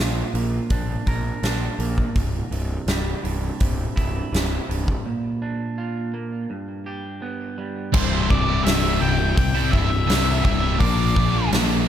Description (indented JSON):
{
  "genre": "quiet-loud alternative rock",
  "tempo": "83 BPM",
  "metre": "4/4",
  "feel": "straight",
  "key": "C mixolydian",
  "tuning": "A4 = 440 Hz",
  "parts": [
    { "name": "electric guitar at the edge of break-up", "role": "arpeggios", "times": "0.0-7.9 s", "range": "C2 to Bb4", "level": "-29 LUFS", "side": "right 3 dB", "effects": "tape echo" },
    { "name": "fuzz picked electric bass", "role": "bass", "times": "0.0-11.8 s", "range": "C1 to C2", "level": "-24 LUFS", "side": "equal", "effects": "overdrive" },
    { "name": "huge arena drum kit", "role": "drums", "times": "0.3-11.7 s", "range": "crash cymbal, hi-hat, kick drum, snare drum", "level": "-23 LUFS", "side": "equal", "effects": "none" },
    { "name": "octave-fuzz lead guitar", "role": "melody", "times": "7.9-11.5 s", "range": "C5 to G5", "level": "-26 LUFS", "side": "equal", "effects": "distortion, tape echo" },
    { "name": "sludgy distorted guitar", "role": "riff", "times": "7.9-11.9 s", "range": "C2 to Bb4", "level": "-26 LUFS", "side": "right 12 dB", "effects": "overdrive" },
    { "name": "thick fuzz guitar", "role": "riff", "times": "7.9-11.9 s", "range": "C2 to Bb4", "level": "-25 LUFS", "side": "left 14 dB", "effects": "distortion" }
  ],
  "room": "little or no reverb",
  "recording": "none",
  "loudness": "-20 LUFS",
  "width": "side -10 dB against mid",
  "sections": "0.0-7.9 A section; 7.9-11.9 B section",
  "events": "break 5.1-7.9",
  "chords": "0.0 Bb; 2.2 C; 5.1 Bb; 6.5 G; 7.9 C; 10.8 Bb"
}